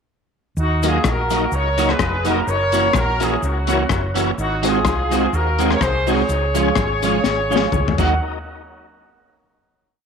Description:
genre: ska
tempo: 126 BPM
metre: 4/4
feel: swing 55% on 8ths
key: Eb minor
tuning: A4 = 442 Hz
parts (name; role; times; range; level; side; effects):
- clear horn section; melody; 0.6-8.2 s; Db4 to Gb5; -21 LUFS; equal; none
- hollow-body short-scale fingered electric bass; bass; 0.6-8.2 s; F1 to Eb2; -23 LUFS; equal; none
- cabasa; percussion; 0.6-8.2 s; none; -38 LUFS; left 16 dB; none
- clean electric guitar; accompaniment; 0.8-8.1 s; Eb3 to Gb4; -23 LUFS; right 13 dB; none
- bright tonewheel organ; stabs; 0.8-8.2 s; Db4 to Eb5; -24 LUFS; left 10 dB; overdrive, chorus vibrato, fast rotary speaker, tape echo
- crunchy breakbeat drum kit; drums; 0.8-8.1 s; crash cymbal, hi-hat, kick drum, rim click, snare drum, toms; -22 LUFS; left 5 dB; none
room: wet spring reverb, RT60 2.2 s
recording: 1960s-style stereo with parts hard left and right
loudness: -16 LUFS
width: side -6 dB against mid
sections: 0.6-8.2 head; 8.2-10.1 final hit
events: drum fill 7.2-8.2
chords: 0.6 Ebm; 2.5 Gb7; 4.4 Ab7; 6.3 Db; 8.0 Ebm; 8.2 N.C.

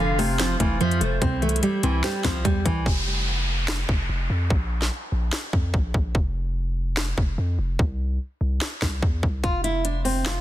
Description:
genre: hip hop, trap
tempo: 146 BPM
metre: 4/4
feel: half-time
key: F major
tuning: A4 = 439 Hz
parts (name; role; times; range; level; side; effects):
- nylon-string guitar; melody; 0.0-2.9, 9.4-10.4 s; C3 to F4; -26 LUFS; right 1 dB; low-pass filter, tape echo
- mellow pan flute; second line; 0.0-1.2 s; C5 to F5; -32 LUFS; left 4 dB; tape echo
- mallet-like synth pluck; accompaniment; 0.0-2.9 s; F2 to C5; -27 LUFS; right 2 dB; chorus, low-pass filter
- warm woodwind section; sustained chords; 0.0-2.8 s; C3 to F4; -35 LUFS; right 2 dB; none
- long sustained 808-style bass; bass; 0.0-10.4 s; F1 to F2; -25 LUFS; equal; none
- trap drum kit; drums; 0.2-10.4 s; finger snaps, hi-hat, kick drum, snare drum; -24 LUFS; equal; soft clipping on snare
- downlifter; sound effects; 2.9-6.1 s; none; -31 LUFS; equal; none
room: small room reverb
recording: dense, heavily limited modern master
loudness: -21 LUFS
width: side -13 dB against mid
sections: 0.0-2.9 A section; 2.9-10.4 B section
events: break 2.9-9.4; hi-hats muted 7.8-9.4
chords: 0.0 F; 1.2 C; 2.9 N.C.; 4.5 Bb5; 6.1 N.C.; 7.8 C; 9.4 Fmaj7(no3)

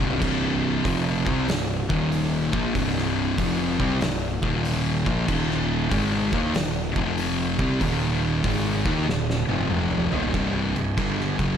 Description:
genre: stoner and doom metal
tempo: 95 BPM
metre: 4/4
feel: swing 65% on 8ths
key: C minor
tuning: A4 = 439 Hz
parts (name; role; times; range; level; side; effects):
- fuzz guitar; riff; 0.0-10.3 s; C2 to Eb4; -30 LUFS; right 1 dB; none
- thick fuzz guitar; riff; 0.0-11.6 s; C2 to Eb4; -26 LUFS; left 8 dB; distortion
- thick fuzz guitar; riff; 0.0-11.6 s; C2 to Eb4; -28 LUFS; right 8 dB; distortion
- fuzz picked electric bass; bass; 0.0-11.6 s; C1 to Eb2; -30 LUFS; equal; overdrive
- oversized low-tuned drum kit; drums; 0.0-11.5 s; crash cymbal, hi-hat, kick drum, snare drum, toms; -28 LUFS; equal; none
room: light reverb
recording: none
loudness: -21 LUFS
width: side -8 dB against mid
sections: 0.0-10.3 A section; 10.3-11.6 B section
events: drum fill 0.0, 9.1-10.3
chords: 0.0 C5; 1.8 Eb5; 2.4 C5; 4.3 Eb5; 5.0 Bb5; 5.3 Eb5; 6.9 F5; 7.5 Eb5; 10.3 C5

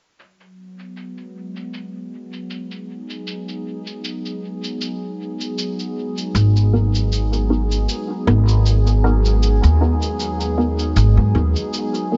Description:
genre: ambient dub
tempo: 78 BPM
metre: 4/4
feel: swing 55% on 16ths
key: G# minor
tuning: A4 = 439 Hz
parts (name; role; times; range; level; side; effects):
- warbly tape-like pad; sustained chords; 0.2-12.2 s; F#3 to G#4; -28 LUFS; equal; chorus, built-in reverb
- shaker; drums; 0.2-12.1 s; none; -32 LUFS; equal; low-pass filter on perc, low-pass filter on room, dub echo
- upright bass; bass; 6.3-11.5 s; G#1 to G#2; -18 LUFS; equal; none
- filtered dub chord stab; stabs; 6.7-12.2 s; B3 to A#4; -27 LUFS; equal; phaser, subtle chorus, dub echo
room: light reverb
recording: nothing above 7.6 kHz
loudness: -19 LUFS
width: mono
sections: 0.2-12.2 A section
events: none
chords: 0.2 G#m7

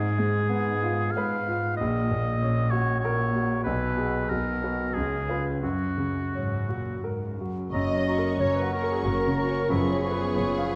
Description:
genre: classical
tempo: 84-99 BPM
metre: 3/4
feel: rubato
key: F# major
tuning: A4 = 440 Hz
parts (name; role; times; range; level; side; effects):
- clear concert grand piano; melody; 0.0-10.8 s; A#1 to F#5; -30 LUFS; equal; none
- warm oboe; second line; 0.0-10.8 s; F#4 to B5; -34 LUFS; equal; none
- rich symphonic cello section; bass; 0.0-10.8 s; F#2 to C#3; -34 LUFS; equal; none
- mellow clarinet; second line; 7.7-10.8 s; G#4 to D#5; -34 LUFS; equal; none
- mellow hollow silver concert flute; second line; 7.7-10.8 s; C#6; -38 LUFS; equal; none
- warm symphonic violin section; second line; 7.7-10.8 s; G#4 to D#5; -37 LUFS; equal; none
- dark bassoon; accompaniment; 7.7-10.8 s; E#3 to F#3; -36 LUFS; equal; none
- dark French horn section; sustained chords; 7.7-10.8 s; A#3 to C#4; -38 LUFS; equal; none
- warm symphonic double bass section; bass; 7.7-10.8 s; F#1; -36 LUFS; equal; none
- dark symphonic violin section; melody; 8.1-10.8 s; C#6; -45 LUFS; equal; none
- dark symphonic viola section; accompaniment; 8.1-10.8 s; B3 to F#4; -36 LUFS; equal; none
room: moderate scoring stage reverb, RT60 2.0 s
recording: vinyl crackle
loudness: -27 LUFS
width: mono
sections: 0.0-7.7 A section; 7.7-10.8 A section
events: none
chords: 0.0 Fdim/Ab; 1.8 F#/A#; 3.7 B5; 5.0 C#7; 5.6 F#; 9.7 C#7/F#

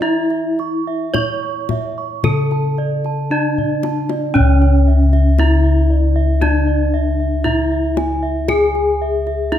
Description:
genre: Javanese gamelan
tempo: 53-58 BPM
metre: 4/4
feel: straight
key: C# pelog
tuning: A4 = 444 Hz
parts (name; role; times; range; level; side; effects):
- gamelan-type bronze metallophone; melody; 0.0-9.6 s; C#4 to C#5; -19 LUFS; equal; none
- gamelan-type bronze metallophone; arpeggios; 0.0-9.6 s; C#5 to C#6; -24 LUFS; right 6 dB; none
- gamelan-type bossed gongs; bass; 0.0-9.6 s; C#2 to G#4-30c; -16 LUFS; left 2 dB; none
- kendang; percussion; 0.3-9.6 s; none; -24 LUFS; left 4 dB; none
room: light reverb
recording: none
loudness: -14 LUFS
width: side -10 dB against mid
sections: 0.0-4.3 A section; 4.3-9.6 B section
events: drum fill 3.6-4.3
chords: none

